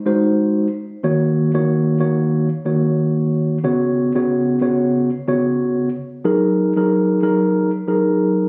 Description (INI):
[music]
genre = hip hop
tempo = 92 BPM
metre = 4/4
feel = swing 60% on 16ths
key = Eb minor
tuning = A4 = 440 Hz
[part]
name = mellow tine electric piano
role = solo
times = 0.1-8.5 s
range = Db3 to Db5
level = -18 LUFS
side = equal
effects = high-pass filter, low-pass filter
[sound]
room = light reverb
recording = recorded on a phone in the room, studio reverb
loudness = -18 LUFS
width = mono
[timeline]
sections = 0.0-1.0 A section; 1.0-8.5 B section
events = none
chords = 0.0 Ab7; 1.0 Ebm7; 3.6 Db7sus4; 6.2 Gb69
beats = 0.38 | 1.03 1.68 2.33 2.98 | 3.64 4.29 4.94 5.59 | 6.25 6.90 7.55 8.20